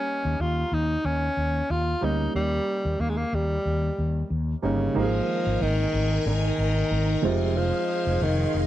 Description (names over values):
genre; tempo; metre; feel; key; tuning
pop; 92 BPM; 4/4; swing 55% on 16ths; Ab major; A4 = 441 Hz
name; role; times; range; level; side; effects
breathy tenor saxophone; melody; 0.0-8.6 s; C3 to F4; -26 LUFS; left 1 dB; slapback echo
clear concert grand piano; accompaniment; 0.0-8.7 s; Eb3 to Ab4; -32 LUFS; right 5 dB; none
fretless electric bass; bass; 0.2-8.7 s; F1 to Eb2; -26 LUFS; equal; lush chorus
phased string machine; sustained chords; 5.0-8.7 s; Eb4 to C6; -32 LUFS; equal; ensemble chorus, phaser
room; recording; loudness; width
light reverb; dry, close 1970s-style studio recording; -23 LUFS; side -13 dB against mid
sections
0.0-5.0 A section; 5.0-8.7 B section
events
none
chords
0.0 Eb7; 5.0 Absus2; 7.2 Fm7